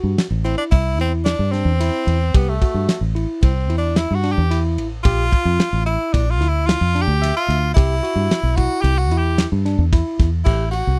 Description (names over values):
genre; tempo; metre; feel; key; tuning
progressive instrumental, band music in an uneven meter; 111 BPM; 5/4; straight; unclear; A4 = 440 Hz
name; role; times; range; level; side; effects
tine electric piano; arpeggios; 0.0-11.0 s; D4 to E5; -28 LUFS; equal; none
fingered electric bass; bass; 0.0-11.0 s; A1 to G2; -21 LUFS; equal; none
warm soul drum kit; drums; 0.2-10.9 s; crash cymbal, kick drum, ride cymbal, snare drum; -20 LUFS; equal; none
breathy tenor saxophone; melody; 0.4-11.0 s; A3 to G4; -25 LUFS; equal; none
room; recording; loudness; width
little or no reverb; none; -18 LUFS; mono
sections
0.0-10.5 A section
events
tenor saxophone solo 0.0-10.5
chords
0.0 C6; 5.1 Bb; 7.8 C; 10.5 Am7